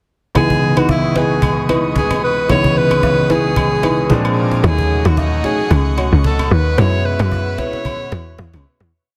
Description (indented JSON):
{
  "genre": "amapiano",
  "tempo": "112 BPM",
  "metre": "4/4",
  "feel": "swing 55% on 16ths",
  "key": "C# minor",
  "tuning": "A4 = 440 Hz",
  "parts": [
    { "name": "clear grand piano", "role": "accompaniment", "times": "0.3-8.9 s", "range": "C#2 to E4", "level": "-21 LUFS", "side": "equal", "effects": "none" },
    { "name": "glassy wavetable pluck", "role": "stabs", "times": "0.3-8.2 s", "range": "D#4 to C#5", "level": "-25 LUFS", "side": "equal", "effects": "chorus, tape echo" },
    { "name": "breathy alto saxophone", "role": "melody", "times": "0.4-8.7 s", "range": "D#4 to C#5", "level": "-22 LUFS", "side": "equal", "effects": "tape echo" },
    { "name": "airy breathy pad", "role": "sustained chords", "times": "0.4-8.9 s", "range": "A3 to D#6", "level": "-28 LUFS", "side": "equal", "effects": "chorus" },
    { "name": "cajon", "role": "drums", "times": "0.4-8.9 s", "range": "none", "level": "-24 LUFS", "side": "equal", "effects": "none" },
    { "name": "agogo bells and woodblock", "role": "percussion", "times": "0.4-8.6 s", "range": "none", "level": "-30 LUFS", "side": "equal", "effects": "none" },
    { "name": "tight log drum bass", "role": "bass", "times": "4.6-8.9 s", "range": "C#2 to F#2", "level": "-17 LUFS", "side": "equal", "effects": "none" }
  ],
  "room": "small room ambience",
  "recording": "dense, heavily limited modern master",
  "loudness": "-15 LUFS",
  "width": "mono",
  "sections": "0.4-8.9 groove",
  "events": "fade-out 6.8-8.9",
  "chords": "0.4 C#m9; 4.1 A#7; 4.6 D#m7b5; 6.8 F#7sus4",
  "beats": "| 0.35 0.89 1.43 1.96 | 2.50 3.03 3.57 4.10 | 4.64 5.17 5.71 6.25 | 6.78 7.32 7.85 8.39"
}